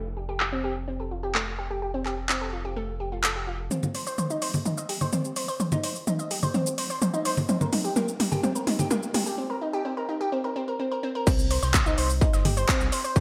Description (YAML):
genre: melodic techno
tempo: 127 BPM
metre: 4/4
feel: straight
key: C dorian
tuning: A4 = 441 Hz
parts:
  - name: analog pluck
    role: arpeggios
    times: 0.0-13.2 s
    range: A3 to Eb5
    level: -32 LUFS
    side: equal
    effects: chorus, sidechain pumping, digital delay
  - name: round analog bass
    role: bass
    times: 0.0-13.2 s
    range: F1 to Eb2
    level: -35 LUFS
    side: equal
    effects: sidechain pumping, high-pass filter
  - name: deep house drum kit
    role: drums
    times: 0.4-13.2 s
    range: congas, crash cymbal, handclaps, hi-hat, shaker, toms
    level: -29 LUFS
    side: equal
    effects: overdrive, small room ambience, sidechain pumping on toms, sidechain pumping on perc, sidechain pumping on hats, sidechain pumping on cymbals, gated reverb
  - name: dusty soul sampler-style drum kit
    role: drums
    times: 11.3-13.2 s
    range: hi-hat, snare drum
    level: -42 LUFS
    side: equal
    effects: none
  - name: electronic kick drum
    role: drums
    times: 11.3-13.2 s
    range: none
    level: -25 LUFS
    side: equal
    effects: distortion, overdrive, small room ambience
room: moderate plate reverb, RT60 1.3 s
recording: bright 1980s-style digital production, low-pass filter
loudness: -27 LUFS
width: mono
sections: 0.0-3.7 A section; 3.7-11.3 B section; 11.3-13.2 C section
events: filter sweep 0.0-3.7; build-up 3.7-11.3; drum fill 3.7-9.4; break 9.4-11.3; drop 11.3-13.2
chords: 0.0 Fadd9; 3.7 Cm; 7.5 Eb6; 11.3 Cm